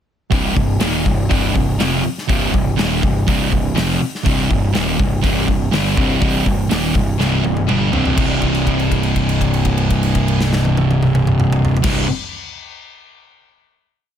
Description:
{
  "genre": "heavy metal",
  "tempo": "122 BPM",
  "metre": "4/4",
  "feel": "straight",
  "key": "C minor",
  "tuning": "A4 = 440 Hz",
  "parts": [
    { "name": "sludgy distorted guitar", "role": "riff", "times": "0.3-12.1 s", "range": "C2 to G3", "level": "-21 LUFS", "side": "left 8 dB", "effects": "overdrive" },
    { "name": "sludgy distorted guitar", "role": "riff", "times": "0.3-12.1 s", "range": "C2 to G3", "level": "-18 LUFS", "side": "right 7 dB", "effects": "overdrive" },
    { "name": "fuzz picked electric bass", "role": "bass", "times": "0.3-12.0 s", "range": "C1 to G1", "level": "-22 LUFS", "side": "left 1 dB", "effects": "overdrive" },
    { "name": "big rock drum kit", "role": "drums", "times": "0.3-12.0 s", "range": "crash cymbal, hi-hat, kick drum, snare drum, toms", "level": "-20 LUFS", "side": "left 1 dB", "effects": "none" }
  ],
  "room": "light reverb",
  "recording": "dense, heavily limited modern master",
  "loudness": "-14 LUFS",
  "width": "side -9 dB against mid",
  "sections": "0.3-8.2 riff; 8.2-12.1 final chord",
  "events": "drum fill 7.2-8.2; held note 8.2-11.8",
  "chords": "0.3 Cm; 8.2 C5",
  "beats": "| 0.31 0.80 1.30 1.79 | 2.28 2.77 3.27 3.76 | 4.25 4.74 5.23 5.72 | 6.21 6.70 7.19 7.68 | 8.18 8.67 9.16 9.66 | 10.15 10.65 11.14 11.64"
}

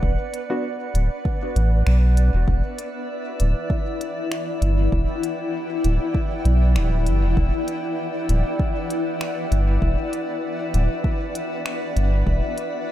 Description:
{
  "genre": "ambient dub",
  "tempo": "98 BPM",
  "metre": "4/4",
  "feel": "swing 54% on 16ths",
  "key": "E minor",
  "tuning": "A4 = 438 Hz",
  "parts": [
    { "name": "granular cloud pad", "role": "sustained chords", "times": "0.0-12.9 s", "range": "E4 to G5", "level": "-26 LUFS", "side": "left 1 dB", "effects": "built-in reverb" },
    { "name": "soft dub sub bass", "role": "bass", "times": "0.0-12.4 s", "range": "D1 to B1", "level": "-18 LUFS", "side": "equal", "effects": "tube saturation" },
    { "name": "electronic kick drum", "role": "drums", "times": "0.0-12.4 s", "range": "none", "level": "-24 LUFS", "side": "equal", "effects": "studio reverb" },
    { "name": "drifting glass-harmonics texture", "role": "texture", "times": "0.0-12.9 s", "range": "E5 to F#5", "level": "-34 LUFS", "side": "left 2 dB", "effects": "chorus, built-in reverb" },
    { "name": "organic electronic drum kit", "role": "drums", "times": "0.3-12.7 s", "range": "finger snaps, hi-hat", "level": "-35 LUFS", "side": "left 1 dB", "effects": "studio reverb, dub echo" },
    { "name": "warm upright piano", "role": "stabs", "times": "0.5-0.6 s", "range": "B3 to F#4", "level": "-31 LUFS", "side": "equal", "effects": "dub echo" }
  ],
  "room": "light reverb, digital ambience",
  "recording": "echo-heavy mix",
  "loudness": "-20 LUFS",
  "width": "side -13 dB against mid",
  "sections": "0.0-2.5 A section; 2.5-12.9 B section",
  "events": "band accent 1.9-2.2",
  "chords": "0.0 Bm; 2.5 Em7; 12.3 Bm",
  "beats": "| 0.03 0.64 1.25 1.86 | 2.47 3.09 3.70 4.31 | 4.92 5.54 6.15 6.76 | 7.37 7.98 8.60 9.21 | 9.82 10.43 11.05 11.66 | 12.27 12.88"
}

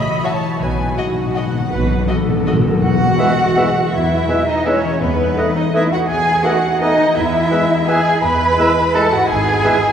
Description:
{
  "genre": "classical",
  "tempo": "166 BPM",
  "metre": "3/4",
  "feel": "uneven beats, rubato",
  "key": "E major",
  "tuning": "A4 = 440 Hz",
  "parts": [
    { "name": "rich chamber violin section", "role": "melody", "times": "0.0-9.7 s", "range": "B4 to B5", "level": "-32 LUFS", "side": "left 3 dB", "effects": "none" },
    { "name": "warm chamber viola section", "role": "accompaniment", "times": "0.0-9.7 s", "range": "B3 to D#5", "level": "-27 LUFS", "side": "right 1 dB", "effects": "none" },
    { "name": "concert harp", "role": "arpeggios", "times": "0.0-9.9 s", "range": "G#2 to F#5", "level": "-24 LUFS", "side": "left 5 dB", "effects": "none" },
    { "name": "rich chamber violin section", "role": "second line", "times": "0.2-9.9 s", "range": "F#4 to B5", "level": "-21 LUFS", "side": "left 2 dB", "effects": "none" },
    { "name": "rich chamber double bass section", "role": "bass", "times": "0.6-9.6 s", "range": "G#1 to E2", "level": "-24 LUFS", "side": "right 2 dB", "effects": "none" },
    { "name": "warm chamber cello section", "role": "bass", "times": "0.6-9.9 s", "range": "B2 to B4", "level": "-20 LUFS", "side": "right 3 dB", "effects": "none" },
    { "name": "timpani", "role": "percussion", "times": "0.6-5.5 s", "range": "E2 to B2", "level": "-21 LUFS", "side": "left 2 dB", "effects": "none" },
    { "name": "mellow flute section", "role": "second line", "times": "2.8-9.7 s", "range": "B4 to B5", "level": "-21 LUFS", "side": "equal", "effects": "none" },
    { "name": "clear oboe", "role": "second line", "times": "3.2-9.8 s", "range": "D#5 to E5", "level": "-26 LUFS", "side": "right 1 dB", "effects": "none" },
    { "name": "mellow clarinet", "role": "second line", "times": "3.2-9.8 s", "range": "B4", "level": "-26 LUFS", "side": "left 2 dB", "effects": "none" },
    { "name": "mellow bassoon", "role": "accompaniment", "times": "3.2-9.8 s", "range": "G#3 to A3", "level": "-25 LUFS", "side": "right 2 dB", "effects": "none" },
    { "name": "mellow French horn section", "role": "sustained chords", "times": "3.2-9.8 s", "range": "G#3 to E4", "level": "-25 LUFS", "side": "left 1 dB", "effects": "none" }
  ],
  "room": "wet cathedral reverb, RT60 4.6 s",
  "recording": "recorded in a church or concert hall",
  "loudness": "-13 LUFS",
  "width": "side -8 dB against mid",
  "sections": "0.0-2.8 A section; 2.8-9.9 B section",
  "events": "timpani fill 0.6-2.8",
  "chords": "0.0 F#m7/A; 0.6 B; 2.8 E; 5.0 B7/E; 7.2 E; 9.3 E/G#",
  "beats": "0.24 | 0.60 0.97 1.36 | 1.72 2.08 2.47 | 2.83 3.19 3.57 | 3.93 4.29 4.66 | 5.01 5.37 5.74 | 6.09 6.44 6.81 | 7.16 7.51 7.88 | 8.23 8.58 8.95 | 9.29 9.64"
}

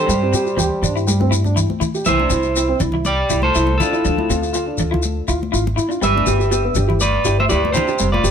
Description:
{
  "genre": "highlife guitar band",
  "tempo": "121 BPM",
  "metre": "4/4",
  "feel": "straight",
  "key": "C major",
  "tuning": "A4 = 440 Hz",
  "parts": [
    { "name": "electric guitar at the edge of break-up", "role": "melody", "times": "0.0-8.3 s", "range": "F4 to E5", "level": "-20 LUFS", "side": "right 1 dB", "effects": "none" },
    { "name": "warm trombone", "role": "second line", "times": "0.0-1.6 s", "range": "G3", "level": "-26 LUFS", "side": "left 1 dB", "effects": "none" },
    { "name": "semi-hollow electric guitar", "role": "accompaniment", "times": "0.0-8.3 s", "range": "B3 to E4", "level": "-26 LUFS", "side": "left 5 dB", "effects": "ensemble chorus" },
    { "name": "felt-muted upright piano", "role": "arpeggios", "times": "0.0-8.3 s", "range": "E3 to G4", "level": "-22 LUFS", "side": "right 2 dB", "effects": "none" },
    { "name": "upright bass", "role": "bass", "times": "0.1-8.3 s", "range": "F1 to G2", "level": "-20 LUFS", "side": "equal", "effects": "none" },
    { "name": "shekere", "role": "percussion", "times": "0.1-8.3 s", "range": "none", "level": "-25 LUFS", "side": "left 5 dB", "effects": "none" },
    { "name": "congas", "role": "percussion", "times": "0.6-8.2 s", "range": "none", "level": "-25 LUFS", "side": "left 2 dB", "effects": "none" }
  ],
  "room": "light reverb",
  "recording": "none",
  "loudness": "-15 LUFS",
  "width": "side -8 dB against mid",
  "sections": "0.0-2.1 A section; 2.1-8.3 B section",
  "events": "none",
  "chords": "0.1 Gsus4; 2.1 Cadd9; 4.0 Dmadd9; 6.0 G",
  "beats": "| 0.10 0.59 1.08 1.58 | 2.07 2.57 3.06 3.55 | 4.05 4.54 5.04 5.53 | 6.02 6.52 7.01 7.50 | 8.00"
}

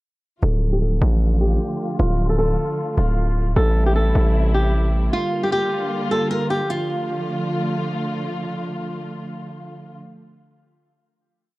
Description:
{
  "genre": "hip hop, trap",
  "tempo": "153 BPM",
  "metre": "4/4",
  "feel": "half-time",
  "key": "D minor",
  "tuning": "A4 = 441 Hz",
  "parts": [
    { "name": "flamenco guitar", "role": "melody", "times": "0.4-7.8 s", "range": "F4 to Bb4", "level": "-24 LUFS", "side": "equal", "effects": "low-pass filter" },
    { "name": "dark studio string section", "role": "sustained chords", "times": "0.4-10.0 s", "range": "C3 to F4", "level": "-26 LUFS", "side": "equal", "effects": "low-pass filter" },
    { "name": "distorted 808-style bass", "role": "bass", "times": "0.4-5.1 s", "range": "D1 to A1", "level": "-18 LUFS", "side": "equal", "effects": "distortion" }
  ],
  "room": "small room ambience",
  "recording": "dry, gritty hardware recording",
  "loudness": "-18 LUFS",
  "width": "side -20 dB against mid",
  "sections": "0.4-6.7 breakdown; 6.7-9.8 final chord",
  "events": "filter sweep 0.4-6.7",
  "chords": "0.4 Dm; 3.6 Am7; 5.1 Gm7; 6.7 Dm",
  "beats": "| 0.43 0.82 1.21 1.60 | 2.00 2.39 2.78 3.17 | 3.56 3.96 4.35 4.74 | 5.13 5.52 5.92 6.31 | 6.70 7.09 7.49 7.88 | 8.27 8.66 9.05 9.45"
}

